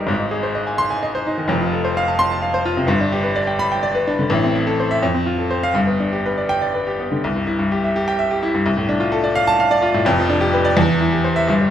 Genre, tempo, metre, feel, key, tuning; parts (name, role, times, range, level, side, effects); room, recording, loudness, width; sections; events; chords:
classical, virtuoso piano study; 85 BPM (dotted quarters); 6/8; rubato; C major; A4 = 441 Hz
bright baby grand piano; solo; 0.0-11.7 s; F1 to Eb6; -16 LUFS; equal
moderate recital hall reverb, RT60 1.6 s; -16 LUFS; side -10 dB against mid
0.0-7.2 A section; 7.2-11.7 B section
0.1 Ab; 1.5 F; 2.9 G; 4.3 Am; 5.0 F; 5.8 G; 7.2 C; 8.7 Dm/C; 10.1 G7/F; 10.8 C/E